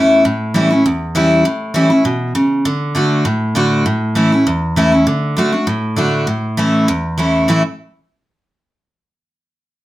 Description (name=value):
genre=bluegrass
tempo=199 BPM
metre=4/4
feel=straight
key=A major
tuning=A4 = 437 Hz
part: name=picked steel-string acoustic guitar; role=solo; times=0.0-7.6 s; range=E2 to F#4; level=-12 LUFS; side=equal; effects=none
room=moderate studio reverb, RT60 0.6 s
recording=none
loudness=-13 LUFS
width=side -15 dB against mid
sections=0.0-5.1 A section; 5.1-7.5 B section; 7.5-8.7 C section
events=none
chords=0.2 A7; 2.7 D; 3.9 A; 5.1 D; 6.3 A